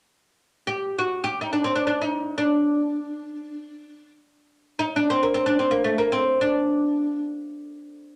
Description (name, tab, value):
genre	Arabic maqam ensemble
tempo	free time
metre	none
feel	none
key	D maqam hijaz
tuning	A4 = 440 Hz
part	oud	solo	0.7-7.2 s	A3 to G4	-24 LUFS	equal	none
room	wet club reverb, RT60 0.7 s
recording	none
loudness	-24 LUFS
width	mono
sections	0.2-8.2 A section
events	none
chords	none